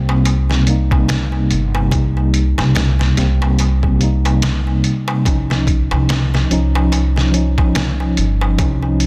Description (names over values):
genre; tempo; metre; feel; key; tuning
trip hop; 72 BPM; 4/4; swing 58% on 16ths; C phrygian; A4 = 441 Hz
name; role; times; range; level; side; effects
mellow tine electric piano; accompaniment; 0.0-9.1 s; C3 to Eb4; -20 LUFS; equal; tremolo, tape echo
upright bass; bass; 0.0-9.1 s; G1 to C2; -19 LUFS; equal; none
darbuka; percussion; 0.1-9.0 s; none; -30 LUFS; equal; none
trip hop sampler-style drum kit; drums; 0.3-9.1 s; hi-hat, kick drum, snare drum; -22 LUFS; equal; small room reverb
room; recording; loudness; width
studio reverb; dense, heavily limited modern master; -16 LUFS; mono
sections
0.0-9.1 A section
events
none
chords
0.0 Cm7; 5.3 Dbadd9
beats
0.25 1.09 | 1.92 2.75 3.59 4.42 | 5.25 6.09 6.92 7.75 | 8.59